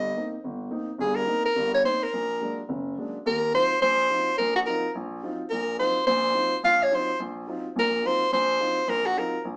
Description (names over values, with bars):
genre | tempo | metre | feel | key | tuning
jazz | 213 BPM | 4/4 | swing 61% on 8ths | Eb dorian from 3.2 s | A4 = 440 Hz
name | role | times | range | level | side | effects
clear soprano saxophone | melody | 0.0-9.4 s | Gb4 to F5 | -22 LUFS | equal | none
dark baby grand piano | accompaniment | 0.0-9.6 s | F#1 to F4 | -31 LUFS | equal | none
room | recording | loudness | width
wet studio reverb, RT60 0.7 s | band playing live in one room, small speaker sound | -22 LUFS | side -33 dB against mid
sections
0.0-3.2 A section; 3.2-9.6 B section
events
none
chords
0.0 Cm7; 2.1 Bbaug7; 3.2 Ebm69